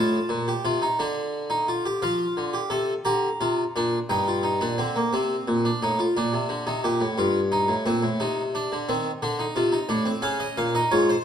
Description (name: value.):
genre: classical, baroque-style 3-part fugue for harpsichord.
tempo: 58 BPM (dotted quarters).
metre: 6/8.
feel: straight.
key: unclear.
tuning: A4 = 441 Hz.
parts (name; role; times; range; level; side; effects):
harpsichord; solo; 0.0-11.2 s; G2 to Bb5; -22 LUFS; equal; none.
room: moderate recital hall reverb, RT60 1.7 s.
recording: close, detailed microphones.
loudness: -22 LUFS.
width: side -8 dB against mid.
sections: 0.0-2.0 A section; 2.0-11.2 B section.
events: none.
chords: 0.0 F7/A; 1.0 Dmadd11; 2.0 Dm; 3.1 Bb; 4.1 Eb/G; 5.1 Cm; 6.2 Bb; 7.2 Eb/G; 8.2 Cmadd9; 9.2 Dm; 10.2 Db.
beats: 0.99 | 2.02 3.06 | 4.10 5.12 | 6.15 7.17 | 8.20 9.22 | 10.24.